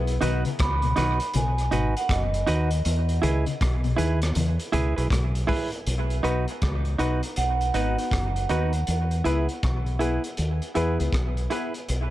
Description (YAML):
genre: dub reggae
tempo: 80 BPM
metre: 4/4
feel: swing 63% on 16ths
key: B major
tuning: A4 = 440 Hz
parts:
  - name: deep dub fingered electric bass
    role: bass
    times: 0.0-12.1 s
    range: F#1 to E2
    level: -25 LUFS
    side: equal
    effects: none
  - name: crunchy breakbeat drum kit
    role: drums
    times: 0.1-12.1 s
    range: hi-hat, kick drum, rim click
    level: -30 LUFS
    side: equal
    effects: none
  - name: semi-hollow electric guitar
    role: accompaniment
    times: 0.2-11.7 s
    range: D#4 to B4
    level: -30 LUFS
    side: right 4 dB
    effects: dub echo
  - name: mellow electric guitar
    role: arpeggios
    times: 0.2-5.6 s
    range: G#2 to D#3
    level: -33 LUFS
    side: left 6 dB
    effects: dub echo
  - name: clear upright piano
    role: stabs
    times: 0.2-0.4, 6.2-11.7 s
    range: B3 to B4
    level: -32 LUFS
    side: left 5 dB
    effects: dub echo
  - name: vibraphone with medium hard mallets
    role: melody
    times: 0.6-2.7, 7.4-8.5 s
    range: D#5 to B5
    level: -30 LUFS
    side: right 3 dB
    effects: dub echo
room: light reverb, small room ambience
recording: none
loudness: -22 LUFS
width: side -15 dB against mid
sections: 0.0-5.9 A section; 5.9-12.1 B section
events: break 0.0-5.9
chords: 0.0 B; 2.8 E; 5.9 B; 8.9 E